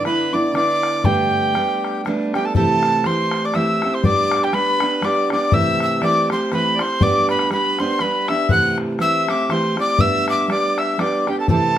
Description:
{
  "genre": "celtic folk, Celtic waltz",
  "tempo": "121 BPM",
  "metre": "3/4",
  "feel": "swing 57% on 8ths",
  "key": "G major",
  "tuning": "A4 = 440 Hz",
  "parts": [
    { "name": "tin whistle", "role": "melody", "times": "0.0-11.8 s", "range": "G5 to F#6", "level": "-20 LUFS", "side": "equal", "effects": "plate reverb" },
    { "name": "accordion", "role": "second line", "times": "0.0-11.8 s", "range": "G4 to F#5", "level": "-24 LUFS", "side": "left 2 dB", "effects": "none" },
    { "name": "picked steel-string acoustic guitar", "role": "accompaniment", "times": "0.0-11.8 s", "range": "G2 to G4", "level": "-21 LUFS", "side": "right 2 dB", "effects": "none" },
    { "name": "bodhran", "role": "percussion", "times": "0.1-11.6 s", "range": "none", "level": "-24 LUFS", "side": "left 3 dB", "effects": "none" }
  ],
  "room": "moderate studio reverb, RT60 0.6 s",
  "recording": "none",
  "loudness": "-16 LUFS",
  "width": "side -11 dB against mid",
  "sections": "0.0-2.5 A section; 2.5-11.8 B section",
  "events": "none",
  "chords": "0.0 G6 (rootless); 1.1 Gadd9; 2.5 C6; 4.0 G; 5.5 C6; 7.0 G; 8.5 C6; 10.0 G"
}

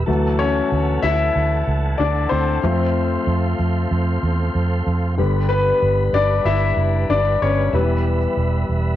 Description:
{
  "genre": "pop",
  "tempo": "94 BPM",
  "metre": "4/4",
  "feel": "straight",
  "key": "unclear",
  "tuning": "A4 = 440 Hz",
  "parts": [
    { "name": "clear concert grand piano", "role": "accompaniment", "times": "0.0-9.0 s", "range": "D3 to E5", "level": "-20 LUFS", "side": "left 4 dB", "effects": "cassette tape" },
    { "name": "tonewheel organ", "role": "sustained chords", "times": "0.0-9.0 s", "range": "G3 to C6", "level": "-28 LUFS", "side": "right 2 dB", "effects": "chorus vibrato, stopped rotary speaker, cassette tape" },
    { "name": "vintage muted fingered electric bass", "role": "bass", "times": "0.1-9.0 s", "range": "E1 to F2", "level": "-20 LUFS", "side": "right 2 dB", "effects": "none" }
  ],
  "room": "wet booth ambience, RT60 0.3 s",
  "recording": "home recording on cassette",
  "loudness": "-16 LUFS",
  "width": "side -12 dB against mid",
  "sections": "0.0-9.0 A section",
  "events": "grand piano solo 0.0-9.0",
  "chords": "0.1 Dmaj7; 2.6 F; 5.2 G; 7.7 Em"
}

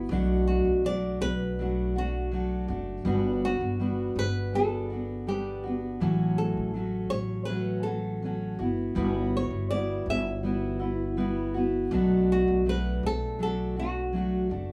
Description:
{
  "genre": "acoustic pop",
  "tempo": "81 BPM",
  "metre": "4/4",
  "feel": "straight",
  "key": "B minor",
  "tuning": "A4 = 439 Hz",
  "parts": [
    { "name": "fingerpicked steel-string acoustic guitar", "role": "accompaniment", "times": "0.0-14.7 s", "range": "A2 to F#4", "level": "-30 LUFS", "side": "equal", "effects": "none" },
    { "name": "upright bass", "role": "bass", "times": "0.0-14.7 s", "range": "F#1 to B1", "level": "-34 LUFS", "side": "equal", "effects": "none" },
    { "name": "flamenco guitar", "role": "melody", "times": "0.5-14.5 s", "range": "F#4 to E5", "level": "-35 LUFS", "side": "equal", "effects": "none" },
    { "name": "vibraphone with medium mallets", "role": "second line", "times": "10.8-12.1 s", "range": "E4 to F#4", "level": "-38 LUFS", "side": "equal", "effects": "none" }
  ],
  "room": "wet studio reverb, RT60 0.5 s",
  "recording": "heard from further back in the room, small room ambience",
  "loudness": "-28 LUFS",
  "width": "mono",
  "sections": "0.0-14.7 A section",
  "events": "none",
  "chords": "0.1 Bm7; 3.1 Gmaj7; 6.0 A6; 8.6 Emadd9/G; 11.9 Bm7"
}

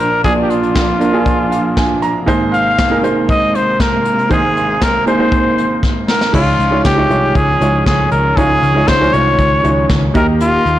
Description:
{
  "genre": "piano-driven pop",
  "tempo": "118 BPM",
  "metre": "4/4",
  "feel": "straight",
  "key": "unclear",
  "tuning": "A4 = 441 Hz",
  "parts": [
    { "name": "clear trumpet", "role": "melody", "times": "0.0-10.8 s", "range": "F4 to F5", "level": "-15 LUFS", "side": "left 1 dB", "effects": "none" },
    { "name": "clear concert grand piano", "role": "accompaniment", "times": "0.0-10.8 s", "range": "Ab1 to Bb5", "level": "-16 LUFS", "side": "right 2 dB", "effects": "none" },
    { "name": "warm studio string section", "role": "sustained chords", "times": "0.0-10.8 s", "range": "Bb2 to G4", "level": "-22 LUFS", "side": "equal", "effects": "none" },
    { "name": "vintage brush drum kit", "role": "drums", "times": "0.2-10.8 s", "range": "crash cymbal, hi-hat, kick drum, snare drum", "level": "-18 LUFS", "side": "left 1 dB", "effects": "soft clipping on snare" },
    { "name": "vintage muted picked electric bass", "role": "bass", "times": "6.3-10.8 s", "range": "C2 to Eb2", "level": "-17 LUFS", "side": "left 1 dB", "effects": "none" }
  ],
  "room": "moderate large studio reverb, RT60 1.3 s, studio ambience",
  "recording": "blown-out, overdriven recording, overdrive",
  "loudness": "-11 LUFS",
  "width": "side -13 dB against mid",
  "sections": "0.0-6.3 A section; 6.3-10.8 B section",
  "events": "grand piano fill 1.3-2.3; drum fill 5.8-6.3",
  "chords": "0.0 Bb; 2.3 Abadd9; 6.3 Dbadd9; 10.2 Eb"
}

